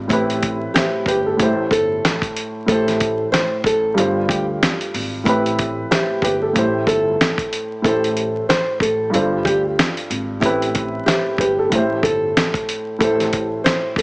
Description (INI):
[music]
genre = hip hop, boom-bap hip-hop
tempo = 93 BPM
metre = 4/4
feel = swing 56% on 16ths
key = A minor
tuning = A4 = 441 Hz
[part]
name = dark upright piano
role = accompaniment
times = 0.0-14.0 s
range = G2 to E5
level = -20 LUFS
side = equal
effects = cassette tape
[part]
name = upright bass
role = bass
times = 0.0-14.0 s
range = G1 to D2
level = -28 LUFS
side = equal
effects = none
[part]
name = nylon-string guitar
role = melody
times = 0.1-14.0 s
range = E4 to C5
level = -21 LUFS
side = equal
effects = none
[part]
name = dusty soul sampler-style drum kit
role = drums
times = 0.1-14.0 s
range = hi-hat, kick drum, snare drum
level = -20 LUFS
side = equal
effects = none
[sound]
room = light reverb, small room ambience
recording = vinyl crackle, small speaker sound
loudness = -16 LUFS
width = side -27 dB against mid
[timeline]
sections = 0.0-14.0 A section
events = none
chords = 0.1 Am9; 1.4 Am7/G; 2.7 Am7; 4.0 G9sus4; 5.3 Am9; 6.6 Am7/G; 7.8 Am7; 9.1 G9sus4; 10.4 Am9; 11.7 Am7/G; 13.0 Am7